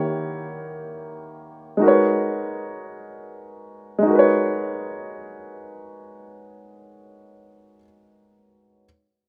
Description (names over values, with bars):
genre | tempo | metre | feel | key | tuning
R&B | 53 BPM (dotted quarters) | 6/8 | straight | G# minor | A4 = 440 Hz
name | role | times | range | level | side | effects
warm baby grand piano | accompaniment | 0.0-8.9 s | D#3 to C#5 | -22 LUFS | equal | none
room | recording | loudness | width
light reverb | rough home demo mix | -21 LUFS | mono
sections
0.0-4.1 A section; 4.1-6.3 B section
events
none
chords
0.0 D#7b9; 1.8 G#m11